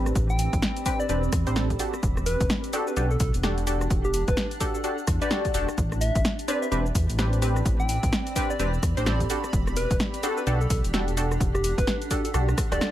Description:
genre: UK garage, two-step garage.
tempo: 128 BPM.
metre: 4/4.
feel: swing 60% on 16ths.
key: A minor.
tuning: A4 = 440 Hz.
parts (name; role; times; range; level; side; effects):
punchy chord stab; stabs; 0.0-12.9 s; C4 to C5; -30 LUFS; right 1 dB; chorus, tape echo.
dark detuned saw bass; bass; 0.0-12.8 s; D1 to E2; -26 LUFS; equal; none.
granular cloud pad; texture; 0.0-12.9 s; C4 to B5; -36 LUFS; right 1 dB; built-in reverb, sidechain pumping.
house drum kit; drums; 0.1-12.9 s; hi-hat, rim click, shaker, snare drum; -30 LUFS; equal; studio reverb.
electronic kick drum; drums; 0.2-12.7 s; none; -28 LUFS; equal; studio reverb.
soft struck synth lead; melody; 0.3-12.9 s; G4 to G5; -31 LUFS; left 1 dB; chorus, tape echo.
room: light reverb.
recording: vinyl crackle.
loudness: -22 LUFS.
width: side -13 dB against mid.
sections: 0.0-12.9 A section.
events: drum fill 12.3-12.9.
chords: 0.0 Am11; 1.8 Em11; 5.8 Am11; 9.3 Em11.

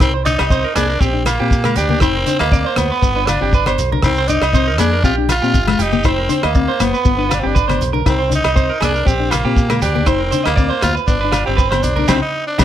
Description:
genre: highlife guitar band.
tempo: 119 BPM.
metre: 4/4.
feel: swing 53% on 16ths.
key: C minor.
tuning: A4 = 445 Hz.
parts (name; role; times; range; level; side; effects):
raspy tenor saxophone; melody; 0.0-12.6 s; Bb3 to F4; -20 LUFS; equal; plate reverb.
mellow electric guitar; accompaniment; 0.0-12.6 s; Ab3 to Eb4; -22 LUFS; left 10 dB; phaser, plate reverb.
clean electric guitar; arpeggios; 0.0-12.6 s; Eb4 to Eb5; -20 LUFS; right 8 dB; slapback echo, plate reverb.
fingered electric bass; bass; 0.0-12.6 s; F1 to Bb2; -20 LUFS; equal; none.
warm soul drum kit; drums; 0.0-12.6 s; hi-hat, kick drum, rim click, snare drum; -18 LUFS; equal; none.
agogo bells; percussion; 0.0-12.6 s; none; -26 LUFS; left 8 dB; none.
shekere; percussion; 0.0-12.6 s; none; -24 LUFS; right 2 dB; none.
congas; percussion; 0.3-12.6 s; none; -25 LUFS; left 2 dB; none.
room: light reverb.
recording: none.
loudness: -13 LUFS.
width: side -11 dB against mid.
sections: 0.0-12.6 A section.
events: band accent 12.1-12.6.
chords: 0.0 Cmadd9; 1.0 Bbsus2; 2.0 F5; 3.0 G; 4.0 Cmadd9; 5.0 Bbsus2; 6.0 F5; 7.1 G; 8.1 Cmadd9; 9.1 Bbsus2; 10.1 F5; 11.1 G; 12.1 Cmadd9.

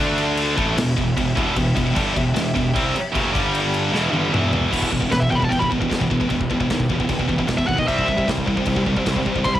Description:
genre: heavy metal.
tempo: 152 BPM.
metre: 4/4.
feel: straight.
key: E minor.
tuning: A4 = 440 Hz.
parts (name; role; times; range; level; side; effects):
rich symphonic string section; sustained chords; 0.0-9.6 s; D3 to E5; -32 LUFS; left 2 dB; cassette tape.
heavy high-gain guitar; riff; 0.0-9.6 s; E2 to D4; -24 LUFS; left 6 dB; distortion, cassette tape.
heavy high-gain guitar; riff; 0.0-9.6 s; E2 to D4; -22 LUFS; right 5 dB; distortion, cassette tape.
fuzz picked electric bass; bass; 0.0-9.6 s; E1 to D#2; -26 LUFS; equal; overdrive.
big rock drum kit; drums; 0.2-9.6 s; crash cymbal, kick drum, snare drum, toms; -25 LUFS; equal; cassette tape.
high-gain lead guitar; melody; 5.1-9.6 s; B4 to C6; -23 LUFS; equal; distortion, cassette tape.
room: small room ambience.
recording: home recording on cassette.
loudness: -18 LUFS.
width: side -12 dB against mid.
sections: 0.0-4.7 A section; 4.7-9.6 B section.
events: half time 0.0-4.7; drum fill 3.9-4.7; lead electric guitar solo 4.7-9.6.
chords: 0.0 D5; 0.6 Em; 3.3 G5; 3.9 Em; 7.9 C.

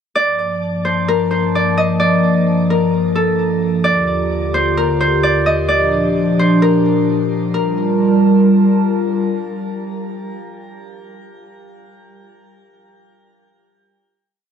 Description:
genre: hip hop, atmospheric cloud-rap.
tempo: 130 BPM.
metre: 4/4.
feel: half-time.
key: G minor.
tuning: A4 = 440 Hz.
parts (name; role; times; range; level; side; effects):
Celtic harp; melody; 0.2-9.7 s; A4 to Eb5; -18 LUFS; equal; digital delay.
warbly tape-like pad; sustained chords; 0.4-10.6 s; Eb2 to A5; -15 LUFS; equal; chorus, built-in reverb.
room: moderate shimmer reverb, RT60 6.1 s.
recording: dark, warm production.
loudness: -13 LUFS.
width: side -7 dB against mid.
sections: 0.2-7.5 breakdown; 7.5-11.2 final chord.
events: none.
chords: 0.2 Gm9; 3.8 Ebmaj9; 5.7 Bb6; 7.5 Gm9.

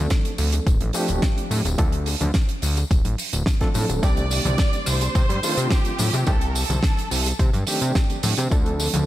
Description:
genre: nu-disco, nu disco.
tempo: 107 BPM.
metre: 4/4.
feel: straight.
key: C dorian.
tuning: A4 = 438 Hz.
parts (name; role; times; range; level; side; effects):
overdriven reed electric piano; accompaniment; 0.0-9.1 s; Eb3 to A4; -28 LUFS; equal; tremolo, sidechain pumping, low-pass filter, diffuse ambient delay.
fat analog bass; bass; 0.0-9.0 s; D1 to C3; -23 LUFS; equal; none.
damped 70s drum kit; drums; 0.1-9.1 s; hi-hat, rim click, snare drum, tambourine; -28 LUFS; right 3 dB; none.
electronic kick drum; drums; 0.1-8.6 s; none; -20 LUFS; equal; none.
tambourine, bongos and congas; percussion; 0.1-9.1 s; none; -30 LUFS; left 3 dB; none.
bright studio violin section; melody; 4.0-7.4 s; G4 to D5; -29 LUFS; right 2 dB; diffuse ambient delay.
room: light reverb, small room ambience.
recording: none.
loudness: -19 LUFS.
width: side -14 dB against mid.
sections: 0.0-9.1 A section.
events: none.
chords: 0.0 Dm7; 4.0 Cm69; 8.5 Dm7.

